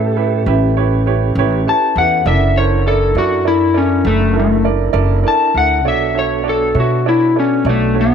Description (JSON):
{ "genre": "slow blues", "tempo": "67 BPM (dotted quarters)", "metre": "12/8", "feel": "straight", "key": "unclear", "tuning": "A4 = 439 Hz", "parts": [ { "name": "electric slide guitar", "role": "melody", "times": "0.0-8.1 s", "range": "A3 to A5", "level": "-15 LUFS", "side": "left 5 dB", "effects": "none" }, { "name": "warm concert grand piano", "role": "accompaniment", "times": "0.0-8.1 s", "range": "E4 to E5", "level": "-19 LUFS", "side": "right 14 dB", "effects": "none" }, { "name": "mellow tonewheel organ", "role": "sustained chords", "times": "0.0-8.1 s", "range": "B3 to A#4", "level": "-24 LUFS", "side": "right 12 dB", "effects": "slow rotary speaker" }, { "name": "upright bass", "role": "bass", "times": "0.0-8.1 s", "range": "F#1 to B2", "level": "-17 LUFS", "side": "equal", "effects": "none" } ], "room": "light reverb, small room ambience", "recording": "1960s-style stereo", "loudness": "-12 LUFS", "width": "side -7 dB against mid", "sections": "0.0-8.1 A section", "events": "electric slide guitar solo 0.0-8.1", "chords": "0.0 A7; 2.3 F#7alt; 5.9 Bm7" }